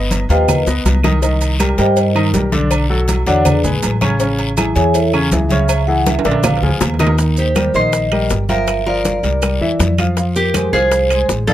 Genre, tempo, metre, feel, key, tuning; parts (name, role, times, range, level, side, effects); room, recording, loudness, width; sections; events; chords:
Afro-Cuban jazz; 161 BPM; 4/4; straight; Eb major from 7.2 s; A4 = 442 Hz
warm baby grand piano; accompaniment; 0.0-11.5 s; C#3 to G5; -19 LUFS; left 1 dB
upright bass; bass; 0.0-11.5 s; G1 to G2; -17 LUFS; equal
congas; percussion; 0.1-11.5 s; -22 LUFS; equal
cowbell and bongos; percussion; 0.1-11.5 s; -23 LUFS; left 6 dB
guiro; percussion; 0.1-11.5 s; -29 LUFS; left 5 dB
maracas; percussion; 0.1-11.5 s; -29 LUFS; right 8 dB
timbales and agogo bells; percussion; 0.1-11.5 s; -25 LUFS; right 7 dB
vibraphone with soft mallets; melody; 0.3-11.5 s; D4 to G#5; -17 LUFS; right 1 dB
claves; percussion; 0.5-11.3 s; -26 LUFS; right 4 dB
lap resonator guitar; second line; 7.4-11.5 s; G4 to C5; -21 LUFS; left 1 dB
little or no reverb; -13 LUFS; side -12 dB against mid
0.0-7.2 A section; 7.2-11.5 B section
drum fill 0.0-1.2, 6.1-7.2; vibraphone solo 0.0-7.2
0.0 G7b13; 1.2 Cm7; 2.7 Bm11; 3.5 E6; 4.2 Amaj7; 5.7 Dbm; 6.4 Bb7; 7.2 Eb69; 8.7 Gm7; 9.4 C7; 10.2 Fmadd9